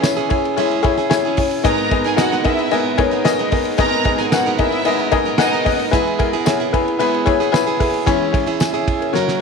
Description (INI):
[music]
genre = piano-driven pop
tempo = 112 BPM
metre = 4/4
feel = straight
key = G# minor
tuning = A4 = 441 Hz
[part]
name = dark upright piano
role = accompaniment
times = 0.0-9.4 s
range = F#1 to G#5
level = -18 LUFS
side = left 7 dB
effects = none
[part]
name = picked plugged-in steel-string acoustic guitar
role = riff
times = 0.0-9.4 s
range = F#3 to A#4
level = -22 LUFS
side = right 12 dB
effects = none
[part]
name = damped 70s drum kit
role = drums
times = 0.0-9.4 s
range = hi-hat, kick drum, ride cymbal, snare drum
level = -22 LUFS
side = right 3 dB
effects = none
[part]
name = tambourine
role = percussion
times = 0.0-8.7 s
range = none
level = -32 LUFS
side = left 6 dB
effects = none
[part]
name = warm symphonic violin section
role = second line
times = 1.6-5.8 s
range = D#4 to A#5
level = -22 LUFS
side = right 3 dB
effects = none
[sound]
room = moderate echo chamber reverb, RT60 1.3 s, studio ambience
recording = 1960s-style stereo with parts hard left and right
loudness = -15 LUFS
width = side -5 dB against mid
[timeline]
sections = 0.0-9.4 A section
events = drum fill 9.1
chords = 0.0 C#m/E; 1.6 G#madd9; 5.9 E; 8.1 C#m/E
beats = 0.04 0.57 1.11 | 1.65 2.18 2.72 3.25 | 3.79 4.32 4.86 5.39 | 5.93 6.46 7.00 7.54 | 8.07 8.61 9.14